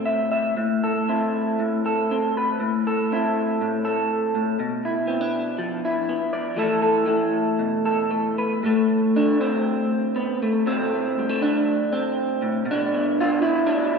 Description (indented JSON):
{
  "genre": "folk, solo fingerstyle acoustic guitar",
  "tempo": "120 BPM",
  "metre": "4/4",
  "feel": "rubato",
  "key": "A minor",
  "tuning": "A4 = 441 Hz",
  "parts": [
    { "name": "electric guitar through a small old amp", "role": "solo", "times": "0.0-14.0 s", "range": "A2 to E5", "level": "-20 LUFS", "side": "equal", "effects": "analog chorus, slapback echo" }
  ],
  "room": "wet concert hall reverb, RT60 2.3 s",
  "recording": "heard from further back in the room",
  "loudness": "-20 LUFS",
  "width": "side -5 dB against mid",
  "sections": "0.6-8.6 A section; 8.6-14.0 B section",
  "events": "none",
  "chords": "0.0 Am; 4.6 Bdim; 6.6 Esus4; 8.6 Am; 12.7 Bmadd11"
}